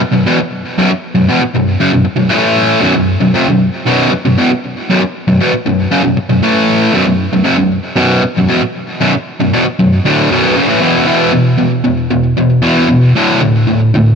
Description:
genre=rock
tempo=116 BPM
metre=4/4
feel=straight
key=unclear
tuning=A4 = 443 Hz
part: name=distorted electric guitar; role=solo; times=0.0-14.2 s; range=B1 to A3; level=-9 LUFS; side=equal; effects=overdrive, digital delay
room=light reverb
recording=none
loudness=-9 LUFS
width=side -6 dB against mid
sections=0.0-11.1 A section; 11.1-14.2 B section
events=none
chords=0.0 B5; 2.3 A5; 2.8 B5; 6.4 A5; 6.9 B5; 11.1 E5; 13.2 D5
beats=0.26 | 0.77 1.29 1.80 2.31 | 2.83 3.34 3.85 4.37 | 4.88 5.40 5.91 6.42 | 6.94 7.45 7.97 8.48 | 9.00 9.52 10.04 10.55 | 11.07 11.59 12.11 12.63 | 13.15 13.67

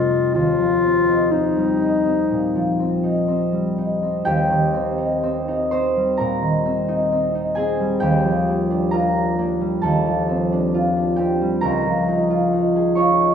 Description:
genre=classical, impressionist duo for clarinet and harp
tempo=59-68 BPM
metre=4/4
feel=rubato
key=Eb major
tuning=A4 = 439 Hz
part: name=mellow clarinet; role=melody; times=0.0-3.3 s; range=Eb4 to F4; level=-19 LUFS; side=left 5 dB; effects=none
part: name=concert harp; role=accompaniment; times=0.0-13.3 s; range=Db2 to Db6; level=-18 LUFS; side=equal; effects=none
room=moderate recital hall reverb, RT60 1.4 s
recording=recorded in a church or concert hall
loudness=-17 LUFS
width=side -7 dB against mid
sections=0.0-4.2 A section; 4.2-13.3 B section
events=none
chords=0.3 Eb69; 4.2 Eb6; 8.0 Gm7/Eb; 9.8 F13/Eb; 11.6 Db69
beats=| 0.34 1.31 2.29 3.27 | 4.25 5.21 6.18 7.10 | 8.02 8.93 9.82 10.73 | 11.63 12.52

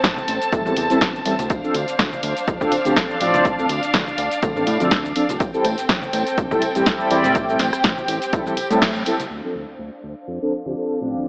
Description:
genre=filtered disco house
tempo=123 BPM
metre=4/4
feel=swing 55% on 16ths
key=D minor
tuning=A4 = 441 Hz
part: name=dark studio violin section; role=sustained chords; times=0.0-11.3 s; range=C4 to A5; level=-24 LUFS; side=equal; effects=sidechain pumping, low-pass filter
part: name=fat analog bass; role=bass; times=0.0-11.3 s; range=D1 to A2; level=-27 LUFS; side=equal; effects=sidechain pumping, low-pass filter
part: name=electronic kick drum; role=drums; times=0.0-8.9 s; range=none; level=-23 LUFS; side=equal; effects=none
part: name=punchy analog drum machine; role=drums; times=0.0-9.4 s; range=cabasa, crash cymbal, hi-hat, rim click, snare drum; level=-23 LUFS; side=equal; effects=sidechain pumping on hats, low-pass filter on hats, sidechain pumping on perc, low-pass filter on perc, low-pass filter on snare, sidechain pumping on cymbals, low-pass filter on cymbals
part: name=tambourine and congas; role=percussion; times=0.0-9.3 s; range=none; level=-35 LUFS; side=equal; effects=sidechain pumping on perc, low-pass filter on perc
part: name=mellow synth brass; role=accompaniment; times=0.5-11.3 s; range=F3 to D5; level=-21 LUFS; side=equal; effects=chorus, phaser, sidechain pumping, low-pass filter
room=moderate lush hall reverb, RT60 2.5 s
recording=dry, gritty hardware recording, AM radio sound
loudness=-17 LUFS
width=side -30 dB against mid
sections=0.0-9.3 A section; 9.3-11.3 B section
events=band accent 8.8; filter sweep on drum 9.3-11.3; filter sweep 9.3-11.3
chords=0.0 Am7; 1.5 Dm7; 5.4 Am7; 9.3 Dm7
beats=0.04 0.53 1.01 | 1.50 1.99 2.48 2.96 | 3.45 3.94 4.43 4.92 | 5.40 5.89 6.38 6.87 | 7.35 7.84 8.33 8.82 | 9.30 9.79 10.28 10.77 | 11.26

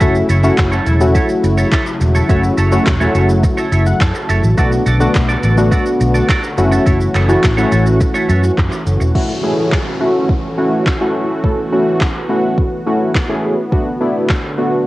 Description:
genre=dance-pop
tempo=105 BPM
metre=4/4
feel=straight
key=F# minor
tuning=A4 = 438 Hz
part: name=warm analog keys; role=accompaniment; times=0.0-14.9 s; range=A3 to A5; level=-16 LUFS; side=left 1 dB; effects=chorus, sidechain pumping, cassette tape
part: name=sweeping resonant pad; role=sustained chords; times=0.0-14.9 s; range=C#3 to F#4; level=-20 LUFS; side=equal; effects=chorus, sidechain pumping, cassette tape
part: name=twelve-string electric guitar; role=riff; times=0.0-9.0 s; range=E4 to D5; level=-21 LUFS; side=right 3 dB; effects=lush chorus, cassette tape
part: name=vintage muted fingered electric bass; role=bass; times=0.0-9.1 s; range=E1 to F#2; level=-14 LUFS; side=equal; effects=sidechain pumping
part: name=smooth R&B drum kit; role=drums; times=0.0-14.4 s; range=crash cymbal, handclaps, hi-hat, kick drum, shaker, snare drum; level=-17 LUFS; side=equal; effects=cassette tape
part: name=downlifter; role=sound effects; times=9.2-13.7 s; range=none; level=-30 LUFS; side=left 1 dB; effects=none
room=light reverb, digital ambience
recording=home recording on cassette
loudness=-12 LUFS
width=side -18 dB against mid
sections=0.0-9.2 A section; 9.2-14.9 B section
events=synth keys fill 3.4-4.6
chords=0.0 F#m7; 4.6 Bm7; 6.6 F#m7; 13.7 Bm7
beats=| 0.01 0.58 1.15 1.72 | 2.29 2.87 3.44 4.01 | 4.58 5.15 5.72 6.29 | 6.87 7.44 8.01 8.58 | 9.15 9.72 10.29 10.87 | 11.44 12.01 12.58 13.15 | 13.72 14.29 14.87

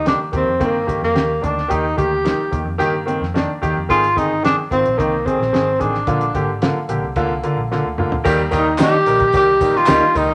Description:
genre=uptempo 1960s-style soul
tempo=110 BPM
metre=4/4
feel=straight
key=Eb major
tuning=A4 = 440 Hz
part: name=breathy tenor saxophone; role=melody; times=0.0-10.3 s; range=Bb3 to G4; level=-19 LUFS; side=equal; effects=none
part: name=vintage muted picked electric bass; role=bass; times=0.0-10.3 s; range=G1 to Eb3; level=-28 LUFS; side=equal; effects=none
part: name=clear baby grand piano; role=accompaniment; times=0.1-10.3 s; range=D3 to Bb4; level=-23 LUFS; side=equal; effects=none
part: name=cloth-damped thuddy drum kit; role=drums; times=0.1-10.3 s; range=hi-hat, kick drum, snare drum, toms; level=-24 LUFS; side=equal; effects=none
part: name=percussive tonewheel organ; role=sustained chords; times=8.2-10.3 s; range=Eb5 to Bb5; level=-33 LUFS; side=equal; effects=none
part: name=tambourine and handclaps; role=percussion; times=8.3-10.3 s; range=none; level=-34 LUFS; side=equal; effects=none
part: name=electric guitar through a small old amp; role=stabs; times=8.8-10.0 s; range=Eb4 to Eb5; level=-24 LUFS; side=equal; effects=none
room=wet studio reverb, RT60 0.8 s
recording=none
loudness=-18 LUFS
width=mono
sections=0.0-8.2 A section; 8.2-10.3 B section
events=drum fill 7.7-8.2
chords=0.0 Eb; 3.9 Ab; 6.1 Bb; 8.2 Eb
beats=0.05 0.60 1.15 | 1.70 2.25 2.79 3.34 | 3.89 4.43 4.98 5.53 | 6.07 6.62 7.16 7.71 | 8.25 8.79 9.34 9.88

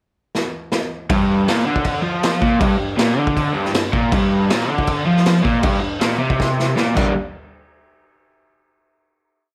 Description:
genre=garage rock duo or trio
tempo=158 BPM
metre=4/4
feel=straight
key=G minor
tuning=A4 = 440 Hz
part: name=raw garage drum kit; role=drums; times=0.3-7.1 s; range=crash cymbal, kick drum, snare drum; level=-23 LUFS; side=equal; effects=none
part: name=raw garage guitar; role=riff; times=1.1-7.1 s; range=G2 to D4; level=-20 LUFS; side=equal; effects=overdrive
room=moderate stone room reverb, RT60 1.0 s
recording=none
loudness=-18 LUFS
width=mono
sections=0.0-1.1 pickup bar; 1.1-7.2 riff; 7.2-8.7 final hit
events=drum fill 0.3-1.1, 6.4-7.2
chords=0.0 N.C.; 1.1 Gm; 7.2 N.C.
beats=0.34 0.72 | 1.09 1.47 1.85 2.22 | 2.60 2.98 3.36 3.74 | 4.12 4.49 4.87 5.25 | 5.63 6.01 6.39 6.77

